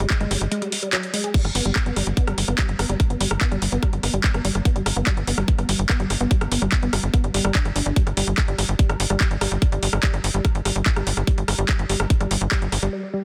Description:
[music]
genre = psychedelic trance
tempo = 145 BPM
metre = 4/4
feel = straight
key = G major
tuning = A4 = 440 Hz
[part]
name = woody wave-folded pluck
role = riff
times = 0.0-13.2 s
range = F#3 to Ab4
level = -30 LUFS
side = equal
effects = chorus, sidechain pumping, digital delay
[part]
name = tight sequencer bass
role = bass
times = 0.0-12.9 s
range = G1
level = -26 LUFS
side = equal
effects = none
[part]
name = drum and bass drum kit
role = drums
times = 0.0-12.9 s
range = crash cymbal, handclaps, hi-hat, rim click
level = -28 LUFS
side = equal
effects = none
[part]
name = electronic kick drum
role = drums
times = 0.1-12.6 s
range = none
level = -22 LUFS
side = equal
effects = none
[sound]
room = digital ambience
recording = dense, heavily limited modern master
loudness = -22 LUFS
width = mono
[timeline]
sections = 0.0-13.2 A section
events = filter sweep on synth arpeggio sound 0.0-13.2; break 12.9-13.2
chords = 0.0 G5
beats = 0.10 0.52 0.93 | 1.34 1.76 2.17 2.58 | 3.00 3.41 3.83 4.24 | 4.65 5.07 5.48 5.89 | 6.31 6.72 7.14 7.55 | 7.96 8.38 8.79 9.21 | 9.62 10.03 10.45 10.86 | 11.27 11.69 12.10 12.52 | 12.93

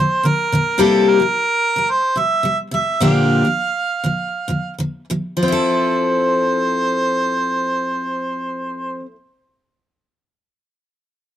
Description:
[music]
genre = pop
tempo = 94-111 BPM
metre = 4/4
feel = swing 55% on 16ths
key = F major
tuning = A4 = 442 Hz
[part]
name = mellow harmonica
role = melody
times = 0.0-9.0 s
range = A4 to F5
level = -19 LUFS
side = right 2 dB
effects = none
[part]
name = picked steel-string acoustic guitar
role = accompaniment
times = 0.0-9.2 s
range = Bb2 to A4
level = -18 LUFS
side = left 2 dB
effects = none
[sound]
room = light reverb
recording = close, detailed microphones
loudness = -16 LUFS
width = side -11 dB against mid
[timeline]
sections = 0.0-5.4 A section; 5.4-10.5 B section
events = slowing down 0.8-5.4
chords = 0.0 Bb; 0.8 C7; 3.0 Bb6; 5.4 Fmaj7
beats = 0.25 | 0.79 1.33 1.88 2.44 | 3.00 3.58 4.17 4.78 | 5.41 6.05 6.69 7.33 | 7.97 8.61

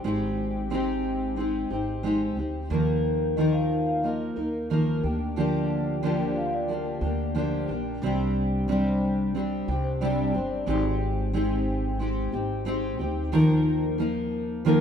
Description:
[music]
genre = acoustic pop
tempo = 90 BPM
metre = 4/4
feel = straight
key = Eb major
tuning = A4 = 440 Hz
[part]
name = fingerpicked steel-string acoustic guitar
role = accompaniment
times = 0.0-14.8 s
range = C3 to Bb4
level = -24 LUFS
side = equal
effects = double-tracked left and right
[part]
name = upright bass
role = bass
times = 0.0-14.8 s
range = G1 to Eb2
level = -32 LUFS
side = equal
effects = none
[part]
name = vibraphone with soft mallets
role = second line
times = 3.4-10.8 s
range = Bb3 to G5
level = -33 LUFS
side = left 1 dB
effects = none
[sound]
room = light reverb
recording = rough home demo mix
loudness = -24 LUFS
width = side -8 dB against mid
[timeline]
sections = 0.0-13.3 A section; 13.3-14.8 B section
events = none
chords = 0.1 Abmaj7; 2.7 Ebsus2; 5.0 Bb6/D; 8.0 Csus2; 10.7 Abmaj7; 13.3 Ebsus2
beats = | 0.05 0.71 1.38 2.04 | 2.71 3.37 4.04 4.70 | 5.37 6.03 6.70 7.36 | 8.03 8.69 9.35 10.02 | 10.68 11.35 12.01 12.67 | 13.34 14.00 14.66

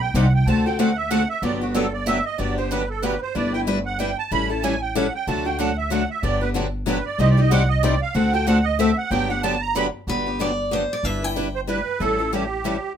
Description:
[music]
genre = acoustic string swing (jazz manouche)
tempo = 187 BPM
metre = 3/4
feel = swing 59% on 8ths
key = G major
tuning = A4 = 439 Hz
[part]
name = musette accordion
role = second line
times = 0.0-12.9 s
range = F#4 to B5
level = -25 LUFS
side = right 5 dB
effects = none
[part]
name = upright bass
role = bass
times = 0.0-12.8 s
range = G1 to D2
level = -24 LUFS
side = equal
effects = none
[part]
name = picked steel-string acoustic guitar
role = accompaniment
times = 0.1-12.8 s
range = C3 to D5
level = -27 LUFS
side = right 4 dB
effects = none
[part]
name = picked steel-string acoustic guitar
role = accompaniment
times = 0.2-12.8 s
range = C3 to D5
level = -24 LUFS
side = left 5 dB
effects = none
[part]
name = picked steel-string acoustic guitar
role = melody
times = 10.1-11.9 s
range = B4 to G5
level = -25 LUFS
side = equal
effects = none
[sound]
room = light reverb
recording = minimal, uncompressed stereo recording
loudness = -19 LUFS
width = side -9 dB against mid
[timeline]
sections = 0.0-2.4 A section; 2.4-10.1 A section; 10.1-13.0 B section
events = accordion solo 0.0-10.1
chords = 0.5 D7; 1.4 Gmaj7; 3.3 Em7/G; 4.3 A7; 5.3 D; 6.2 Gmaj7; 7.2 Cmadd9; 8.2 D7; 9.1 Gmaj7; 11.0 Em7/G; 12.0 A7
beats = 0.15 | 0.47 0.79 1.11 | 1.43 1.75 2.07 | 2.39 2.71 3.03 | 3.35 3.67 3.99 | 4.31 4.63 4.95 | 5.27 5.59 5.91 | 6.23 6.55 6.87 | 7.19 7.51 7.83 | 8.15 8.47 8.79 | 9.11 9.43 9.75 | 10.07 10.39 10.71 | 11.04 11.36 11.68 | 12.00 12.32 12.64

